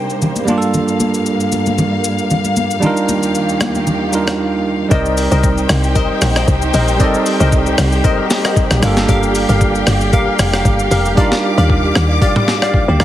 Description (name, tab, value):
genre	amapiano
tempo	115 BPM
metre	4/4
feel	swing 55% on 16ths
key	C dorian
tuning	A4 = 442 Hz
part	barky tine electric piano	accompaniment	0.0-13.0 s	G3 to D5	-18 LUFS	right 3 dB	none
part	warm studio string section	sustained chords	0.0-13.0 s	Eb2 to D6	-20 LUFS	left 1 dB	sidechain pumping
part	breakbeat sampler-style drum kit	drums	0.1-13.0 s	hi-hat, kick drum, rim click, shaker, snare drum, toms	-17 LUFS	equal	none
part	congas	percussion	0.2-4.0 s	none	-20 LUFS	left 1 dB	none
part	glassy wavetable pluck	stabs	4.9-13.0 s	G4 to F5	-19 LUFS	left 3 dB	chorus, digital delay
part	woody log drum bass	bass	4.9-13.0 s	F1 to Eb2	-15 LUFS	equal	none
room	light reverb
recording	heavily compressed radio sound, multiband compression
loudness	-12 LUFS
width	side -12 dB against mid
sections	0.0-4.9 A section; 4.9-13.0 B section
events	hi-hats muted 11.2-13.0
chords	0.5 Gm7; 2.8 Ebmaj9; 4.9 Cm7; 8.8 Gm7; 11.2 Ebmaj9